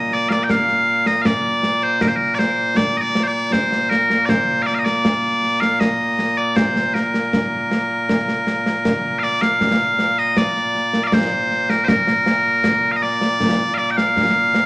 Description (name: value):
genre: scottish traditional, Scottish pipe music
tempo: 79 BPM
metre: 3/4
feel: straight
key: Bb major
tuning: A4 = 439 Hz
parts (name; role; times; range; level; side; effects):
- loud bright bagpipes; melody; 0.0-14.7 s; Bb2 to G5; -20 LUFS; equal; none
- concert snare drum and concert bass drum; drums; 0.1-14.7 s; none; -24 LUFS; equal; none
room: wet studio reverb, RT60 0.9 s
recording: vinyl crackle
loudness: -18 LUFS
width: mono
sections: 0.0-9.6 A section; 9.6-14.7 B section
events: none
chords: none